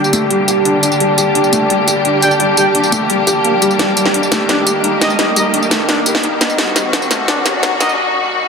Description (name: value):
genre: dark technical drum and bass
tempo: 172 BPM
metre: 4/4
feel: straight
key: unclear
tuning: A4 = 439 Hz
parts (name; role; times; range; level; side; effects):
- clear studio string section; sustained chords; 0.0-8.5 s; D3 to G4; -17 LUFS; left 2 dB; vintage 12-bit sampler grit, low-pass filter
- drum and bass drum kit; drums; 0.0-8.0 s; hi-hat, snare drum, tambourine; -16 LUFS; equal; none
- riser; sound effects; 0.6-8.0 s; none; -26 LUFS; right 1 dB; none
- deep dark ambient pad; texture; 0.0-8.0 s; Eb4 to A5; -18 LUFS; right 2 dB; chorus, built-in reverb
- felt-muted upright piano; arpeggios; 0.1-7.8 s; G3 to G4; -19 LUFS; left 3 dB; dub echo
- warm brass ensemble; stabs; 2.2-2.7, 5.0-5.5, 7.8-7.9 s; Eb4 to G5; -19 LUFS; right 1 dB; dub echo
room: wet lush hall reverb, RT60 1.6 s, digital ambience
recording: dense, heavily limited modern master, high-pass filter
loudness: -11 LUFS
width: side -5 dB against mid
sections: 0.0-8.5 A section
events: build-up 0.0-8.5; riser 0.6-8.0; drum fill 3.8-8.0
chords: 0.0 Gm; 3.8 Eb